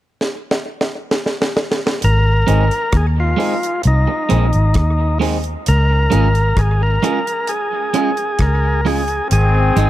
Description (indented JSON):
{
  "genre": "roots reggae",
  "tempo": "66 BPM",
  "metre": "4/4",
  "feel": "straight",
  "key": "Ab major",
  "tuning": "A4 = 440 Hz",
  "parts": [
    { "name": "deep reggae drum kit", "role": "drums", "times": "0.2-9.9 s", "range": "hi-hat, kick drum, rim click, snare drum", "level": "-20 LUFS", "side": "equal", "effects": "slapback echo" },
    { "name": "overdriven tonewheel organ", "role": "melody", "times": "2.0-9.9 s", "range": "Eb4 to Bb4", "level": "-19 LUFS", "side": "equal", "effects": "dub echo" },
    { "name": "vintage muted fingered electric bass", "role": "bass", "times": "2.0-9.9 s", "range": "Ab1 to Eb2", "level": "-14 LUFS", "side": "equal", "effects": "none" },
    { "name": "electric guitar at the edge of break-up", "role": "accompaniment", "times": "2.5-9.9 s", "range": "Ab3 to Ab4", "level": "-22 LUFS", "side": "right 4 dB", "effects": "dub echo" },
    { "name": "clear horn section", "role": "second line", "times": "9.3-9.9 s", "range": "Ab2 to C4", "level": "-19 LUFS", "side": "left 4 dB", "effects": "none" }
  ],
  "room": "studio reverb",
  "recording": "none",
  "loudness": "-14 LUFS",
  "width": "side -14 dB against mid",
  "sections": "0.0-2.0 A section; 2.0-9.3 B section",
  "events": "drum fill 0.2-2.0",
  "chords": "0.0 N.C.; 2.0 Ab; 5.7 Db; 9.3 Ab"
}